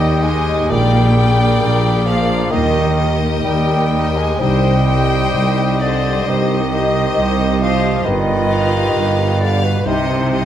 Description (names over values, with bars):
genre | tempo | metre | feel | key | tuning
classical | 61-68 BPM | 4/4 | rubato | Eb major | A4 = 440 Hz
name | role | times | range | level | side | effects
bright chamber violin section | melody | 0.0-10.4 s | D5 to F5 | -26 LUFS | left 4 dB | none
bright silver concert flute | second line | 0.0-10.4 s | B4 to Ab5 | -27 LUFS | left 2 dB | none
clear clarinet | second line | 0.0-10.4 s | Eb4 to Ab4 | -26 LUFS | left 2 dB | none
mellow cor anglais | second line | 0.0-10.4 s | B4 to Eb5 | -25 LUFS | right 1 dB | none
rich chamber violin section | second line | 0.0-10.4 s | B4 to Ab5 | -26 LUFS | left 3 dB | none
rich chamber viola section | accompaniment | 0.0-10.4 s | Eb4 to C5 | -25 LUFS | left 3 dB | none
warm bassoon | accompaniment | 0.0-10.4 s | B2 to Ab3 | -21 LUFS | right 1 dB | none
concert harp | arpeggios | 0.0-10.4 s | G2 to C6 | -25 LUFS | left 9 dB | none
clear studio double bass section | bass | 0.0-10.4 s | G1 to Eb2 | -22 LUFS | right 3 dB | none
dark tuba | bass | 0.0-10.4 s | G1 to Eb2 | -20 LUFS | right 3 dB | none
rich studio cello section | bass | 0.0-10.4 s | C2 to C3 | -21 LUFS | right 1 dB | none
clear trombone section | sustained chords | 0.7-10.2 s | G2 to Ab3 | -30 LUFS | right 3 dB | none
warm French horn section | sustained chords | 0.7-10.2 s | D4 to C5 | -27 LUFS | left 3 dB | none
room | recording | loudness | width
moderate concert hall reverb, RT60 1.9 s | none | -13 LUFS | side -10 dB against mid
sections
0.0-10.4 A section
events
none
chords
0.0 Eb; 0.7 Bb7; 2.5 Eb; 4.4 Cm; 8.1 G7; 9.9 Cm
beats
| 0.71 1.62 2.52 3.45 | 4.40 5.35 6.26 7.17 | 8.06 8.95 9.86